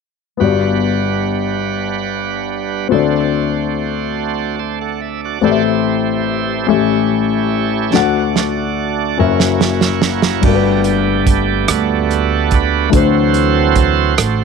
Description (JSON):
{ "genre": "slow gospel", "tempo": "48 BPM (dotted quarters)", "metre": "6/8", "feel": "straight", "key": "G major", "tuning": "A4 = 439 Hz", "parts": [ { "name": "warm grand piano", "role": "accompaniment", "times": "0.4-14.4 s", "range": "F#1 to F#5", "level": "-16 LUFS", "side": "left 9 dB", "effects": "none" }, { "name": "bright tonewheel organ", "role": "sustained chords", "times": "0.4-14.4 s", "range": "D3 to A5", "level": "-18 LUFS", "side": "right 14 dB", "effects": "slow rotary speaker, overdrive" }, { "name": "warm soul drum kit", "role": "drums", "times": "7.9-14.4 s", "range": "crash cymbal, hi-hat, kick drum, rim click, snare drum", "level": "-16 LUFS", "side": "right 5 dB", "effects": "none" }, { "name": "upright bass", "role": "bass", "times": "10.4-14.4 s", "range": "G1 to D2", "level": "-18 LUFS", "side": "right 2 dB", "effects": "none" } ], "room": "light reverb, small room ambience", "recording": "1960s-style stereo with parts hard left and right", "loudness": "-13 LUFS", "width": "side -5 dB against mid", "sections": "0.4-10.4 A section; 10.4-14.4 B section", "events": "drum fill 7.9-10.4; tonewheel organ solo 10.4-14.4", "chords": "0.4 Gmaj7; 2.9 D7; 5.4 Am7; 6.7 A7; 7.9 D; 9.2 F#7; 10.4 Gmaj7; 12.9 D7" }